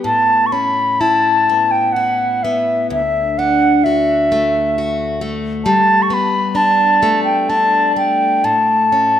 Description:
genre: celtic folk, Celtic slow air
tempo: 64 BPM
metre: 3/4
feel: rubato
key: A mixolydian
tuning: A4 = 440 Hz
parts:
  - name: mellow wooden flute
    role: melody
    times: 0.0-9.2 s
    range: E5 to C#6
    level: -13 LUFS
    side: equal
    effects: none
  - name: picked plugged-in steel-string acoustic guitar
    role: accompaniment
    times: 0.0-9.2 s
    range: D2 to G4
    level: -20 LUFS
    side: left 3 dB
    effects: none
room: moderate scoring stage reverb, RT60 1.6 s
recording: none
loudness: -12 LUFS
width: side -10 dB against mid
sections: 0.0-9.2 A section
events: none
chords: 0.0 Aadd9; 2.9 D; 5.7 Gadd9; 8.4 A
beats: | 0.05 1.01 1.96 | 2.91 3.85 4.76 | 5.66 6.57 7.50 | 8.44

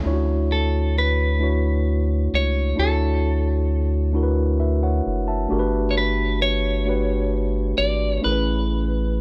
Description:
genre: R&B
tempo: 44 BPM (dotted quarters)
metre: 6/8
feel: straight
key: D major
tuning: A4 = 440 Hz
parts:
  - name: mellow tine electric piano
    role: accompaniment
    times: 0.0-9.2 s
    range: A3 to A5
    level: -26 LUFS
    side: equal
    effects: none
  - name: round analog bass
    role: bass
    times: 0.1-9.2 s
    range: F#1 to D2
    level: -24 LUFS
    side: equal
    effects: none
  - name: clean electric guitar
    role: melody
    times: 0.5-9.2 s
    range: A4 to D5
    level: -28 LUFS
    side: equal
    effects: none
room: digital ambience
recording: none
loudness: -21 LUFS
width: mono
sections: 0.0-9.2 A section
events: none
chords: 0.0 Dmaj9; 5.5 Gmaj9; 8.2 Amaj9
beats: | 0.04 1.41 | 2.77 4.13 | 5.50 6.86 | 8.22

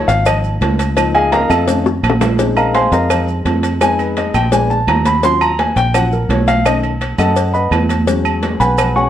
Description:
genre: Afro-Cuban jazz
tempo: 169 BPM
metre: 4/4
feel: straight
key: unclear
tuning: A4 = 439 Hz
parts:
  - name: dark baby grand piano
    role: accompaniment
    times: 0.0-9.1 s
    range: Eb3 to C#6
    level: -15 LUFS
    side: left 1 dB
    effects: none
  - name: fingered electric bass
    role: bass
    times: 0.0-9.1 s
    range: Ab1 to Gb2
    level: -17 LUFS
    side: right 1 dB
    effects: none
  - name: congas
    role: percussion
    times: 0.1-9.1 s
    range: none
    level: -24 LUFS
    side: right 2 dB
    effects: none
  - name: cowbell and bongos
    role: percussion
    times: 0.1-9.0 s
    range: none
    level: -22 LUFS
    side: left 5 dB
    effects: none
  - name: maracas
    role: percussion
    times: 0.1-9.1 s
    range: none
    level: -35 LUFS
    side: right 8 dB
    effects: none
  - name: agogo bells and timbales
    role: percussion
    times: 0.3-9.0 s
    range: none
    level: -21 LUFS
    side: right 6 dB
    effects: none
  - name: claves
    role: percussion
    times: 0.3-9.0 s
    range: none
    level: -27 LUFS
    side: right 8 dB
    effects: none
room: moderate studio reverb, RT60 0.9 s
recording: worn, warbling old tape, cassette tape, warbly pitch drift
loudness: -12 LUFS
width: side -11 dB against mid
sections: 0.0-2.4 A section; 2.4-9.1 A section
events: grand piano solo 0.0-9.1; drum fill 1.3-2.4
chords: 0.0 Db69; 1.7 F7b13; 2.4 Bbm11; 3.8 Fm7b5; 4.5 Bb7b9; 5.2 Ebm9; 6.7 Cb9; 8.1 E69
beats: 0.27 0.62 | 0.97 1.33 1.68 2.04 | 2.39 2.75 3.10 3.46 | 3.82 4.17 4.53 4.88 | 5.24 5.59 5.95 6.30 | 6.66 7.01 7.37 7.72 | 8.08 8.43 8.79

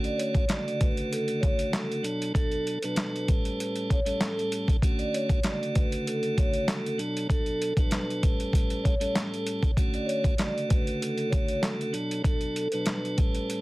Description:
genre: hip hop, boom-bap hip-hop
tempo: 97 BPM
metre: 4/4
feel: swing 55% on 16ths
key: unclear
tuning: A4 = 444 Hz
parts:
  - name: tonewheel organ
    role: accompaniment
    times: 0.0-13.6 s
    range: A2 to A4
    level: -31 LUFS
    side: right 1 dB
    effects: stopped rotary speaker, high-pass filter, low-pass filter
  - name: boom bap sampler-style drum kit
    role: drums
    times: 0.0-13.6 s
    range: handclaps, hi-hat, kick drum, snare drum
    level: -26 LUFS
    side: equal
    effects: none
  - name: vibraphone with soft mallets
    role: melody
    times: 0.1-13.6 s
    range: A4 to D5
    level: -32 LUFS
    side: equal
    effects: high-pass filter, low-pass filter
room: light reverb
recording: dense, heavily limited modern master, vinyl crackle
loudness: -25 LUFS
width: side -20 dB against mid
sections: 0.0-13.6 A section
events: none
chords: 0.0 Dmaj7; 2.0 Bm7; 3.3 A7; 4.8 Dmaj7; 7.0 Bm7; 8.2 A7; 9.8 Dmaj7; 11.9 Bm7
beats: 0.49 1.11 1.73 | 2.35 2.97 3.59 4.20 | 4.82 5.44 6.06 6.68 | 7.30 7.92 8.53 9.15 | 9.77 10.39 11.01 11.63 | 12.25 12.86 13.48

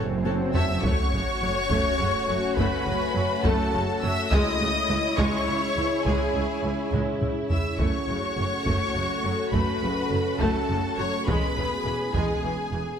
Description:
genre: cinematic, hybrid orchestral and electronic film score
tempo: 69 BPM (dotted quarters)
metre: 6/8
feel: straight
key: F# minor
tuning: A4 = 441 Hz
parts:
  - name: clear symphonic violin section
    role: second line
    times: 0.0-13.0 s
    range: G#4 to A5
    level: -31 LUFS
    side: left 4 dB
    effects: none
  - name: rich studio viola section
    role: accompaniment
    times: 0.0-13.0 s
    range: C#3 to A4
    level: -31 LUFS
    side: right 1 dB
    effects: none
  - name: deep dark ambient pad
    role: sustained chords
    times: 0.0-13.0 s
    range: G#3 to C#5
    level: -30 LUFS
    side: equal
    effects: chorus, built-in reverb
  - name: mellow French horn section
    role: sustained chords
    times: 0.0-13.0 s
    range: G#3 to G#4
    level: -36 LUFS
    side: left 4 dB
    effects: none
  - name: rich symphonic cello section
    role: bass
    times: 0.0-12.8 s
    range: C#2 to F#2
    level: -32 LUFS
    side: right 2 dB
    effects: none
  - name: rich symphonic double bass section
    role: bass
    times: 0.0-12.8 s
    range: E1 to C#2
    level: -32 LUFS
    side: right 3 dB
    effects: none
  - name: swell and sub drop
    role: sound effects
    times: 0.0-2.6 s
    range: none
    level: -32 LUFS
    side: equal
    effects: none
  - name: taiko ensemble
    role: drums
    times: 0.3-12.7 s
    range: none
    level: -29 LUFS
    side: equal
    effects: none
  - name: warm symphonic violin section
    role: melody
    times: 0.5-13.0 s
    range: G#5 to E6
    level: -31 LUFS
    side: left 1 dB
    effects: none
room: moderate scoring stage reverb, RT60 1.7 s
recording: none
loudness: -22 LUFS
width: side -8 dB against mid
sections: 0.8-13.0 A section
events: drum fill 0.0-0.8, 6.9-7.8; swell 0.0-0.8; impact 0.8-2.6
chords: 0.0 F#m; 4.3 C#m; 7.8 F#m; 11.3 E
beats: | 0.83 1.70 | 2.57 3.44 | 4.31 5.18 | 6.05 6.92 | 7.79 8.66 | 9.53 10.40 | 11.27 12.14

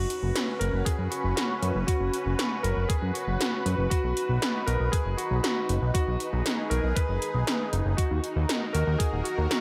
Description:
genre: synthwave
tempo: 118 BPM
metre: 4/4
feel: straight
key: unclear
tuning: A4 = 440 Hz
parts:
  - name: warm electric grand piano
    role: melody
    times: 0.0-9.6 s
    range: F#4 to B4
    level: -34 LUFS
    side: equal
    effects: lush chorus, analog delay
  - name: lush unison pad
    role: sustained chords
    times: 0.0-9.6 s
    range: C#4 to B4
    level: -35 LUFS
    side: equal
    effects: chorus, phaser, sidechain pumping
  - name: fat analog bass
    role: bass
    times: 0.0-9.5 s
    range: D#1 to F#2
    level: -29 LUFS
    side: equal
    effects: sidechain pumping
  - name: 80s electronic pad drums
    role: drums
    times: 0.1-9.6 s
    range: hi-hat, snare drum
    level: -33 LUFS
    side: equal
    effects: overdrive
  - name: electronic kick drum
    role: drums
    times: 0.9-9.1 s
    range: none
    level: -28 LUFS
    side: equal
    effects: none
room: moderate plate reverb, RT60 1.4 s, digital ambience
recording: dreamy mix soaked in reverb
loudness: -27 LUFS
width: mono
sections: 0.0-9.6 A section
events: none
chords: 0.0 F#sus4; 3.9 B; 8.0 D#m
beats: 0.35 0.86 1.37 | 1.88 2.39 2.90 3.41 | 3.91 4.42 4.93 5.44 | 5.95 6.46 6.96 7.47 | 7.98 8.49 9.00 9.51

